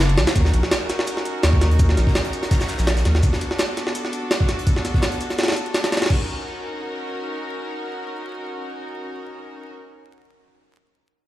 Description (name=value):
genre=drum and bass, jungle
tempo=167 BPM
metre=4/4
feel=swing 54% on 16ths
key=Eb minor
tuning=A4 = 440 Hz
part: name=rich chamber string section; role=sustained chords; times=0.0-9.7 s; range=B3 to Bb4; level=-28 LUFS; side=equal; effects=none
part: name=saturated sub bass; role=bass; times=0.0-3.2 s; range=F#1 to Eb2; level=-17 LUFS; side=equal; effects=none
part: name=huge arena drum kit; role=drums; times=0.0-6.0 s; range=hi-hat, shaker, snare drum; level=-33 LUFS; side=equal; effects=high-pass filter on hats, high-pass filter on snare, high-pass filter on perc, high-pass filter on room
part: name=jungle sampler-style drum kit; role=drums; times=0.0-6.2 s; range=crash cymbal, hi-hat, kick drum, snare drum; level=-20 LUFS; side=equal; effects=none
room=light reverb, studio ambience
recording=played on a big sound system in a bare room, large studio reverb, vinyl crackle, lossy compression artefacts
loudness=-19 LUFS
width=side -14 dB against mid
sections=0.4-6.1 A section; 6.1-9.0 B section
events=none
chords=0.4 Ebm7; 3.2 Bm7; 6.1 Ebm7